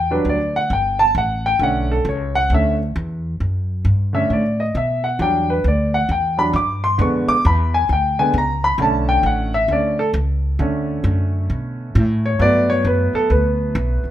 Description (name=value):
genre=jazz, big band swing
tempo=133 BPM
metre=4/4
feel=swing 65% on 8ths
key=B minor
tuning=A4 = 440 Hz
part: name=clear baby grand piano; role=accompaniment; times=0.0-14.1 s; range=D3 to D6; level=-18 LUFS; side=equal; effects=none
part: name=upright bass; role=bass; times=0.0-14.1 s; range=G1 to B2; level=-20 LUFS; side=equal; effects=none
room=moderate large studio reverb, RT60 0.9 s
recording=minimal, uncompressed stereo recording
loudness=-16 LUFS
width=side -12 dB against mid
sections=0.0-14.1 A section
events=grand piano solo 0.0-14.1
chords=0.0 Em7; 1.6 Bm7; 5.2 Em7; 7.0 Fdim7; 8.8 Bm7; 12.4 Gmaj7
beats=0.26 0.71 1.16 | 1.61 2.06 2.51 2.96 | 3.40 3.85 4.30 4.75 | 5.20 5.65 6.10 6.55 | 7.00 7.45 7.90 8.35 | 8.80 9.25 9.70 10.15 | 10.60 11.05 11.50 11.95 | 12.40 12.85 13.30 13.75